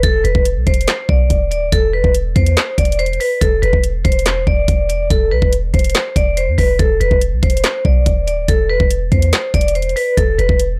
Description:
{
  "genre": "hip hop, trap",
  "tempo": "142 BPM",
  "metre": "4/4",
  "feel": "half-time",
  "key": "unclear",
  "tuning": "A4 = 440 Hz",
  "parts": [
    { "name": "vibraphone with medium hard mallets", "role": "melody", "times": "0.0-10.6 s", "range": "A4 to D5", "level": "-20 LUFS", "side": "equal", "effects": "low-pass filter" },
    { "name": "clean 808-style bass", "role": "bass", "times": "0.0-10.8 s", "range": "D1 to E2", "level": "-19 LUFS", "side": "equal", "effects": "none" },
    { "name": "trap drum kit", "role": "drums", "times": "0.0-10.7 s", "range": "handclaps, hi-hat, kick drum, snare drum", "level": "-19 LUFS", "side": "equal", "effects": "overdrive" }
  ],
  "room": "little or no reverb",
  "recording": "dry, gritty hardware recording, transformer saturation",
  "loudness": "-15 LUFS",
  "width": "mono",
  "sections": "0.0-10.8 A section",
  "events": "none",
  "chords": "0.0 E5; 3.4 Cadd9/E; 6.8 E5; 10.2 Cmaj13/E (rootless)"
}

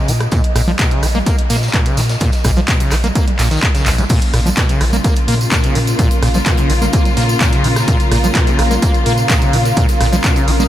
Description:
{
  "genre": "acid house",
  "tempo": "127 BPM",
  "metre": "4/4",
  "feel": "straight",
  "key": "Bb minor",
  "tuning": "A4 = 440 Hz",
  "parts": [
    { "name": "liquid acid bass", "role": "riff", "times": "0.0-10.6 s", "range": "Bb1 to Db4", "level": "-19 LUFS", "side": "equal", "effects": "chorus, tube saturation, sidechain pumping, ping-pong delay" },
    { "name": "granular cloud pad", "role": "texture", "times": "0.0-10.7 s", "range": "Db4 to Eb6", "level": "-24 LUFS", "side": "equal", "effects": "built-in reverb, sidechain pumping" },
    { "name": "saturated sub bass", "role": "bass", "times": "0.1-10.7 s", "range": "Bb1 to Bb2", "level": "-16 LUFS", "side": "equal", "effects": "sidechain pumping" },
    { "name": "gated 80s drum kit", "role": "drums", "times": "0.1-10.7 s", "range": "hi-hat, snare drum, tambourine", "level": "-30 LUFS", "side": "left 1 dB", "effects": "none" },
    { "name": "punchy analog drum machine", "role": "drums", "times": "0.1-10.7 s", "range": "congas, crash cymbal, handclaps, hi-hat, rim click", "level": "-20 LUFS", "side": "right 1 dB", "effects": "none" },
    { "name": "tambourine", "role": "percussion", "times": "0.1-10.7 s", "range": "none", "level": "-29 LUFS", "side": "right 3 dB", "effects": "none" },
    { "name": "electronic kick drum", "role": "drums", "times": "0.3-10.3 s", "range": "none", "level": "-15 LUFS", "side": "equal", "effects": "none" },
    { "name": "warm studio string section", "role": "sustained chords", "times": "4.1-10.7 s", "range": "Db3 to F4", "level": "-21 LUFS", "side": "left 2 dB", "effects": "sidechain pumping" }
  ],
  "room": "light reverb, studio reverb",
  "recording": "none",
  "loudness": "-12 LUFS",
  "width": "side -12 dB against mid",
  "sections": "0.0-4.1 A section; 4.1-10.7 B section",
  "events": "drum fill 3.9; drop 4.1-10.7",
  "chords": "0.0 Bbm"
}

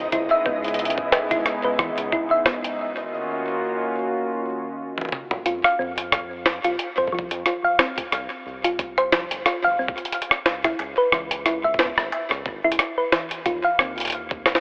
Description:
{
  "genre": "IDM",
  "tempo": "90 BPM",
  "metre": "4/4",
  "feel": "swing 56% on 16ths",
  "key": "unclear",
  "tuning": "A4 = 441 Hz",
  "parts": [
    { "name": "warbly tape-like pad", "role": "sustained chords", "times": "0.0-5.4 s", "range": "Db3 to Gb4", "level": "-26 LUFS", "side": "equal", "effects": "chorus, built-in reverb" },
    { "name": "round analog bass", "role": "bass", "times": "0.0-14.6 s", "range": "G1 to F2", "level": "-36 LUFS", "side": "equal", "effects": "none" },
    { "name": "flickering grainy texture", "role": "texture", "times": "0.0-2.8 s", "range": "Eb5", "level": "-32 LUFS", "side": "equal", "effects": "none" },
    { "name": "thumb-piano-like synth pluck", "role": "arpeggios", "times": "0.1-13.9 s", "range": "Fb3 to F5", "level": "-23 LUFS", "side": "equal", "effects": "chorus, digital delay" },
    { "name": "electronic kick drum", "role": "drums", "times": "0.1-14.4 s", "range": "none", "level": "-28 LUFS", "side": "equal", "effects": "none" },
    { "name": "jungle sampler-style drum kit", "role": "drums", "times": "0.1-14.6 s", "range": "hi-hat, rim click, snare drum, toms", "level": "-22 LUFS", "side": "equal", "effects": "digital delay" }
  ],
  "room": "moderate huge ambient reverb, RT60 4.1 s",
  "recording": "telephone sound",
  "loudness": "-20 LUFS",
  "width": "side -36 dB against mid",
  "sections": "0.0-5.5 A section; 5.5-14.6 A section",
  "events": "break 2.8-5.5; drum fill 5.0-5.5",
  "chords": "0.0 Dbm7; 2.8 Ebm7; 5.5 F5; 8.1 C5; 10.5 Dbm7; 13.5 Eb5"
}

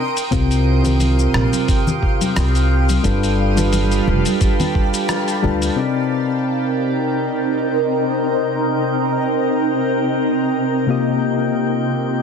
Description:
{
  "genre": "sunset chillout",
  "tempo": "88 BPM",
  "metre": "4/4",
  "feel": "swing 55% on 16ths",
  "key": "C dorian",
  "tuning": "A4 = 440 Hz",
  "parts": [
    { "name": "shimmering ambient pad", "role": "sustained chords", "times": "0.0-12.2 s", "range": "C3 to Eb6", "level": "-20 LUFS", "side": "equal", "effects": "chorus, built-in reverb, phaser" },
    { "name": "drifting glass-harmonics texture", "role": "texture", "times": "0.0-12.2 s", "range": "G5", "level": "-30 LUFS", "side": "left 1 dB", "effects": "chorus, built-in reverb" },
    { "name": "dusty soul sampler-style drum kit", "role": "drums", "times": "0.2-5.7 s", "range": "cabasa, hi-hat, rim click", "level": "-26 LUFS", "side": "left 2 dB", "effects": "none" },
    { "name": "soft electric-piano-like synth keys", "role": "accompaniment", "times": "0.3-12.2 s", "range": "C3 to Eb5", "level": "-20 LUFS", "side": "moving between left 7 dB and right 6 dB", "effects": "chorus, auto-pan, ping-pong delay" },
    { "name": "upright bass", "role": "bass", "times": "0.3-5.7 s", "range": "F1 to D2", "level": "-17 LUFS", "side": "equal", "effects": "none" },
    { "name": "electronic kick drum", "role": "drums", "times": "0.3-4.9 s", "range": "none", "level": "-18 LUFS", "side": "equal", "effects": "none" },
    { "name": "congas", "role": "percussion", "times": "0.9-4.7 s", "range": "none", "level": "-25 LUFS", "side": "left 3 dB", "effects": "none" }
  ],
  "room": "moderate scoring stage reverb, RT60 1.9 s, digital ambience",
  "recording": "dense, heavily limited modern master",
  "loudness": "-15 LUFS",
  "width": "side -6 dB against mid",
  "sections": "0.0-5.8 A section; 5.8-12.2 B section",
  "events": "band accent 5.1-5.4",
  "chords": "0.0 Eb69; 3.0 G9; 5.8 Cm7; 10.9 Eb69/C"
}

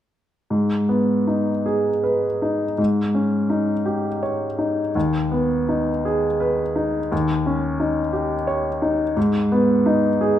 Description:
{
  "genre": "classical, romantic nocturne for solo piano",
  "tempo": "52-60 BPM (dotted quarters)",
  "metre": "12/8",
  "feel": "rubato",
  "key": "G# minor",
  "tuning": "A4 = 440 Hz",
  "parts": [
    { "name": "clear baby grand piano", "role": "solo", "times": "0.5-10.4 s", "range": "D#2 to C#5", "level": "-18 LUFS", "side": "equal", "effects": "none" }
  ],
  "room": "moderate large studio reverb, RT60 1.2 s",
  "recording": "minimal, uncompressed stereo recording",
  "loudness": "-19 LUFS",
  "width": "side -11 dB against mid",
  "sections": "0.5-10.4 A section",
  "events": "none",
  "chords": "0.5 G#m; 2.8 D#7/G#; 4.9 G#m/D#; 7.1 D#7; 9.2 G#m"
}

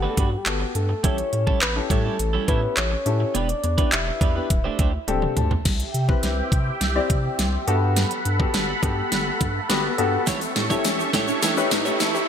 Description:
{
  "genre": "dance-pop",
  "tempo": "104 BPM",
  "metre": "4/4",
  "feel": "straight",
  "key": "unclear",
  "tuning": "A4 = 439 Hz",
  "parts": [
    { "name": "soft octave-layered synth lead", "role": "melody", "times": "0.0-5.1 s", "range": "F#4 to E5", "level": "-28 LUFS", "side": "left 2 dB", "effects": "chorus, digital delay" },
    { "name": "dark baby grand piano", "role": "accompaniment", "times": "0.0-12.2 s", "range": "B3 to A5", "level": "-28 LUFS", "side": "left 5 dB", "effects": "lush chorus, sidechain pumping" },
    { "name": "twelve-string electric guitar", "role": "riff", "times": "0.0-5.6, 10.3-12.2 s", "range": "G3 to C#5", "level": "-29 LUFS", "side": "right 6 dB", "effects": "lush chorus" },
    { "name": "saturated sub bass", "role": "bass", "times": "0.0-12.2 s", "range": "D1 to C3", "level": "-26 LUFS", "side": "equal", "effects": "sidechain pumping" },
    { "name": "pop drum kit", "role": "drums", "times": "0.2-12.1 s", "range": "crash cymbal, handclaps, hi-hat, kick drum, snare drum, toms", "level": "-23 LUFS", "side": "equal", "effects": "gated reverb" },
    { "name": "filtered supersaw swell", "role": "sustained chords", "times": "5.7-12.3 s", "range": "G4 to C#6", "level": "-27 LUFS", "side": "right 1 dB", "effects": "wide subtle chorus, sidechain pumping" },
    { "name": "riser", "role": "sound effects", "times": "8.1-12.3 s", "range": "none", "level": "-30 LUFS", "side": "right 1 dB", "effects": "none" },
    { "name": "wide unison pluck", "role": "arpeggios", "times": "10.3-12.2 s", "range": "E3 to G4", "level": "-33 LUFS", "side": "left 3 dB", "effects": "none" },
    { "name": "tube shaker", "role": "percussion", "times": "10.3-12.3 s", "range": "none", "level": "-34 LUFS", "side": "left 12 dB", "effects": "none" }
  ],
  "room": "light reverb",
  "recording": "bright 1980s-style digital production, high-pass filter",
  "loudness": "-20 LUFS",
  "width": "side -8 dB against mid",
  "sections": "0.0-5.7 A section; 5.7-12.3 B section",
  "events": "grand piano fill 4.8-5.7; drum fill 5.1-5.7, 5.7-12.3; build-up 5.7-12.3; filter sweep 5.7-12.3; riser 8.1-12.3",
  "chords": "0.0 Gmaj9; 1.0 A7; 3.4 Em7; 4.5 D7sus4; 5.7 Cmaj7; 7.7 Gmaj9; 10.3 A7"
}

